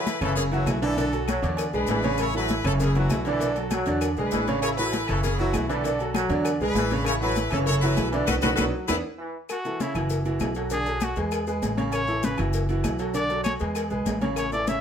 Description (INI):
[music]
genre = latin, salsa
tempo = 197 BPM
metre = 4/4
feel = straight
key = A major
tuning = A4 = 440 Hz
[part]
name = brilliant horn section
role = melody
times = 0.0-9.0 s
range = A3 to C#5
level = -29 LUFS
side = left 1 dB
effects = none
[part]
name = clear trombone section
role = second line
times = 0.0-9.3 s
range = C#3 to F#3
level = -31 LUFS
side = left 1 dB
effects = none
[part]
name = bright upright piano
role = accompaniment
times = 0.0-14.8 s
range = C#3 to D5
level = -28 LUFS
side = right 2 dB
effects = none
[part]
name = congas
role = percussion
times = 0.1-14.8 s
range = none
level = -31 LUFS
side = left 3 dB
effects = none
[part]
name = cowbell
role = percussion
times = 0.1-14.8 s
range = none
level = -35 LUFS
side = left 4 dB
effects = none
[part]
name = maracas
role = percussion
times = 0.1-14.8 s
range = none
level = -42 LUFS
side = left 8 dB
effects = none
[part]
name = timbales and agogo bells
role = percussion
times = 0.1-14.8 s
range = none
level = -36 LUFS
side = right 3 dB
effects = none
[part]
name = upright bass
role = bass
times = 0.2-14.8 s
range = F#1 to E2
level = -28 LUFS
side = equal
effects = none
[part]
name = claves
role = percussion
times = 0.2-14.5 s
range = none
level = -40 LUFS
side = left 9 dB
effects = none
[part]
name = bright trumpet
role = melody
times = 9.5-14.8 s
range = E4 to E5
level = -28 LUFS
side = equal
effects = none
[sound]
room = light reverb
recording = none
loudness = -22 LUFS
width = side -8 dB against mid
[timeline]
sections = 0.0-9.5 A section; 9.5-14.8 B section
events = band accent 8.3-9.5; drum fill 8.6-9.5; trumpet solo 9.5-14.8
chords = 0.4 F#m7; 1.0 Bm7; 1.6 E7; 2.2 Aadd9; 2.8 F#m7; 3.4 Bm7; 4.0 E7; 4.6 Aadd9; 5.2 F#m7; 5.8 Bm7; 6.5 E7; 7.1 Aadd9; 7.7 F#m7; 8.3 Bm7; 8.9 E7(no3); 9.5 A; 10.1 F#m7; 10.7 Bm7; 11.3 E; 11.9 A; 12.5 F#m7; 13.1 Bm7; 13.8 E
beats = 0.06 0.37 0.67 | 0.98 1.28 1.58 1.89 | 2.19 2.50 2.80 3.10 | 3.41 3.71 4.02 4.32 | 4.63 4.93 5.24 5.54 | 5.84 6.15 6.45 6.76 | 7.06 7.37 7.67 7.97 | 8.28 8.58 8.89 9.19 | 9.49 9.80 10.10 10.41 | 10.71 11.02 11.32 11.62 | 11.93 12.23 12.54 12.84 | 13.15 13.45 13.76 14.06 | 14.37 14.67